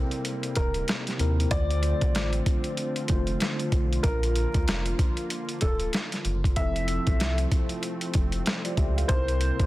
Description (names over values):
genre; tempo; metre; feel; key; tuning
hip hop, boom-bap hip-hop; 95 BPM; 4/4; swing 60% on 16ths; F major; A4 = 438 Hz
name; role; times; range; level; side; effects
mellow tine electric piano; accompaniment; 0.0-9.7 s; C3 to F5; -32 LUFS; left 1 dB; medium stereo tremolo, high-pass filter, low-pass filter
warm analog pad; sustained chords; 0.0-9.7 s; C3 to F4; -35 LUFS; right 1 dB; lush chorus, high-pass filter, low-pass filter
boom bap sampler-style drum kit; drums; 0.1-9.7 s; hi-hat, kick drum, snare drum; -26 LUFS; equal; none
dark upright piano; melody; 0.6-9.7 s; A4 to E5; -32 LUFS; left 1 dB; high-pass filter, low-pass filter, tape echo
sub bass with octave; bass; 0.6-9.7 s; D1 to Eb2; -27 LUFS; equal; none
room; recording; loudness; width
little or no reverb; dense, heavily limited modern master, vinyl crackle; -24 LUFS; side -17 dB against mid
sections
0.0-9.7 A section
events
none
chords
0.0 C7; 1.5 Dm7; 4.0 Bb; 6.6 Fmaj7; 9.1 C7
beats
0.25 0.88 | 1.51 2.15 2.78 3.41 | 4.04 4.67 5.30 5.93 | 6.57 7.20 7.83 8.46 | 9.09